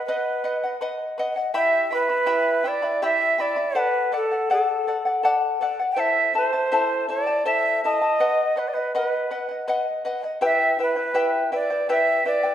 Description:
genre	andean folk, Andean ensemble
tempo	81 BPM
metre	3/4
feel	straight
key	E minor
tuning	A4 = 441 Hz
part	reedy quena	melody	0.0-12.5 s	A4 to G5	-22 LUFS	right 2 dB	none
part	charango	accompaniment	0.0-12.5 s	E4 to B5	-23 LUFS	left 2 dB	none
room	wet recital hall reverb, RT60 1.3 s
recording	none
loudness	-20 LUFS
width	side -10 dB against mid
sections	0.0-12.5 A section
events	none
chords	0.0 B; 1.6 Em; 3.8 D; 6.0 Am; 8.2 B; 10.4 Em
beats	0.07 0.81 | 1.55 2.29 3.03 | 3.77 4.51 5.25 | 5.99 6.72 7.46 | 8.20 8.94 9.68 | 10.42 11.15 11.89

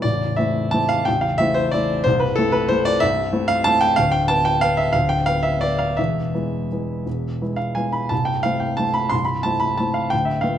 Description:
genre	classical, piano waltz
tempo	163-200 BPM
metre	3/4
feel	rubato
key	A minor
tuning	A4 = 436 Hz
part	warm grand piano	solo	0.0-10.6 s	A0 to C6	-18 LUFS	equal	none
room	moderate recital hall reverb, RT60 1.6 s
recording	none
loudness	-18 LUFS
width	side -10 dB against mid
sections	0.0-10.6 A section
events	none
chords	0.0 Am; 2.1 Am/C; 4.0 Dm69; 6.0 E; 8.1 Am/C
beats	| 0.03 0.37 0.73 | 1.07 1.39 1.73 | 2.05 2.38 2.71 | 3.02 3.33 3.66 | 3.98 4.29 4.62 | 4.95 5.28 5.62 | 5.98 6.34 6.70 | 7.06 7.41 7.77 | 8.11 8.45 8.79 | 9.13 9.46 9.80 | 10.13 10.44

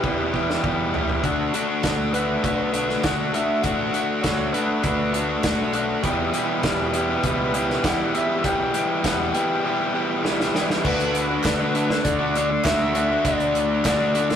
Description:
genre	indie rock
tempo	100 BPM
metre	4/4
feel	straight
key	D major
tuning	A4 = 441 Hz
part	overdriven synth lead	melody	0.0-14.4 s	G4 to G5	-26 LUFS	left 1 dB	none
part	overdriven electric guitar	riff	0.0-14.4 s	E2 to G4	-24 LUFS	left 4 dB	none
part	raw garage guitar	riff	0.0-14.4 s	G3 to G4	-27 LUFS	right 6 dB	overdrive
part	growling picked electric bass	bass	0.0-14.4 s	A1 to E3	-31 LUFS	right 1 dB	overdrive
part	loose indie drum kit	drums	0.0-14.4 s	crash cymbal, hi-hat, kick drum, snare drum, toms	-26 LUFS	right 1 dB	none
part	group handclap	percussion	11.4-14.0 s	none	-34 LUFS	right 4 dB	none
room	moderate stone room reverb, RT60 1.0 s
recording	rough rehearsal-room recording, tube saturation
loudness	-20 LUFS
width	side -8 dB against mid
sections	0.0-1.2 A section; 1.2-10.8 B section; 10.8-14.4 C section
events	drum fill 0.0-1.2, 10.2-10.8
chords	0.0 Em; 1.2 D6; 6.0 Em; 10.8 D6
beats	0.04 0.64 | 1.24 1.84 2.44 3.04 | 3.64 4.24 4.84 5.44 | 6.04 6.64 7.24 7.84 | 8.44 9.04 9.64 10.24 | 10.84 11.44 12.04 12.64 | 13.24 13.85

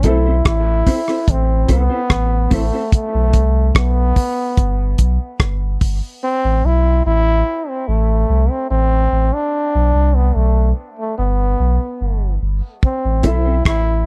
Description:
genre	dub reggae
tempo	73 BPM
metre	4/4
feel	straight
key	A minor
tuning	A4 = 440 Hz
part	clear trombone	melody	0.0-14.1 s	A3 to E4	-22 LUFS	equal	dub echo
part	mellow electric guitar	accompaniment	0.0-2.8, 13.2-13.5 s	C4 to C5	-26 LUFS	equal	ensemble chorus, dub echo
part	warm upright piano	stabs	0.0-0.2, 13.2-13.4 s	A3 to E5	-29 LUFS	equal	dub echo
part	warm sub bass	bass	0.0-14.0 s	G1 to C2	-18 LUFS	equal	none
part	damped 70s drum kit	drums	0.0-6.0, 12.8-13.9 s	hi-hat, kick drum, rim click	-17 LUFS	equal	none
room	little or no reverb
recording	dry, close 1970s-style studio recording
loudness	-17 LUFS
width	mono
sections	0.0-12.8 A section; 12.8-14.1 B section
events	break 0.0-12.8; part muted 6.2-12.8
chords	0.0 Am; 2.9 Amadd9/B; 4.6 G; 6.2 Am; 9.5 Bm7; 11.2 G; 12.8 Am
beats	0.45 1.28 2.10 | 2.93 3.75 4.58 5.40 | 6.22 7.05 7.88 8.70 | 9.53 10.35 11.18 12.00 | 12.83 13.65

